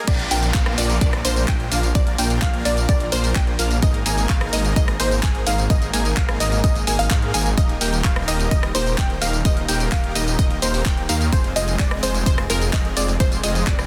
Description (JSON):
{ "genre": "EDM, festival progressive house", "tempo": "128 BPM", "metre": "4/4", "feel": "straight", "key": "unclear", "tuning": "A4 = 440 Hz", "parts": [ { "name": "unison pluck", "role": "arpeggios", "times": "0.1-13.9 s", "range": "Bb4 to Ab5", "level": "-29 LUFS", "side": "equal", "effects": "sidechain pumping, delay" }, { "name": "dense compressed supersaw", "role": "riff", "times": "0.1-13.9 s", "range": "Ab3 to Ab5", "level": "-28 LUFS", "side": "equal", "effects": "sidechain pumping, delay" }, { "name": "detuned saw bass", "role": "bass", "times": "0.1-13.9 s", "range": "Eb1 to Ab2", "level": "-25 LUFS", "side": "equal", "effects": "sidechain pumping" }, { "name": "electronic kick drum", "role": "drums", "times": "0.1-13.8 s", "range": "none", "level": "-22 LUFS", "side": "equal", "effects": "high-pass filter on kick, high-pass filter on room" }, { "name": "house drum kit", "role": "drums", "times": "0.1-13.9 s", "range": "crash cymbal, handclaps, hi-hat, rim click, tambourine", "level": "-28 LUFS", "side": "equal", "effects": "high-pass filter on hats, high-pass filter on perc, soft clipping on snare, high-pass filter on snare, high-pass filter on cymbals, high-pass filter on room" }, { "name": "downlifter", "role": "sound effects", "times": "0.1-3.8 s", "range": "none", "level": "-35 LUFS", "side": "equal", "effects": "none" } ], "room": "digital ambience", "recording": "dense, heavily limited modern master, high-pass filter", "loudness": "-20 LUFS", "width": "mono", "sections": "0.1-13.9 A section", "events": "drop 0.1-13.9", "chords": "0.1 Bb; 3.8 Absus2; 7.6 Eb; 11.3 Fm" }